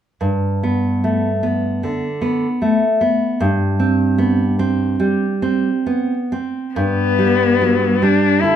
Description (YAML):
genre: romantic duo for cello and classical guitar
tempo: 63-78 BPM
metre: 4/4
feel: rubato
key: G major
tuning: A4 = 440 Hz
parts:
  - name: nylon-string guitar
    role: accompaniment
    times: 0.2-8.6 s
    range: G2 to C4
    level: -16 LUFS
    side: right 1 dB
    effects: none
  - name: warm cello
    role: melody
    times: 6.7-8.6 s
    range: B3 to E4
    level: -15 LUFS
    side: left 5 dB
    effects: none
room: moderate large studio reverb, RT60 0.9 s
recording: band playing live in one room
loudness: -15 LUFS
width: side -9 dB against mid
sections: 0.2-6.8 A section; 6.8-8.6 B section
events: none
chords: 0.2 G; 3.4 C5/G; 6.8 G